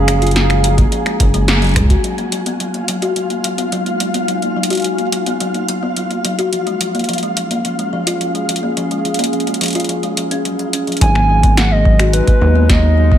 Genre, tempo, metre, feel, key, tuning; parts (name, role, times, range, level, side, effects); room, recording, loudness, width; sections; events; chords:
IDM; 107 BPM; 4/4; straight; A4 = 442 Hz
warbly nostalgic lead; melody; 0.0-1.5, 11.0-13.2 s; G#4 to G#5; -19 LUFS; equal; chorus, cassette tape, tape echo
warbly tape-like pad; sustained chords; 0.0-13.2 s; G#3 to A#5; -23 LUFS; right 2 dB; chorus, built-in reverb
kalimba; arpeggios; 0.0-13.2 s; E#3 to F#4; -20 LUFS; left 2 dB; low-pass filter, dub echo
rubbery square bass; bass; 0.0-2.0, 11.0-13.2 s; F#1 to D#2; -13 LUFS; equal
flickering grainy texture; texture; 0.0-11.0 s; E#4 to G#5; -24 LUFS; equal; built-in reverb, sidechain pumping
electro analog drum machine; drums; 0.1-12.8 s; finger snaps, hi-hat, rim click, snare drum; -20 LUFS; equal
electronic kick drum; drums; 0.8-2.0, 11.0-13.2 s; -14 LUFS; equal
light reverb, digital ambience; -13 LUFS; side -10 dB against mid
0.0-2.0 A section; 2.0-11.0 B section; 11.0-13.2 C section
band accent 1.5; drum fill 1.8; filter sweep on ambient pad 2.0-11.0; filter sweep on kalimba 2.0-11.0
0.0 F#maj9; 2.0 G#m9; 6.5 F#maj9 (rootless); 11.0 G#m9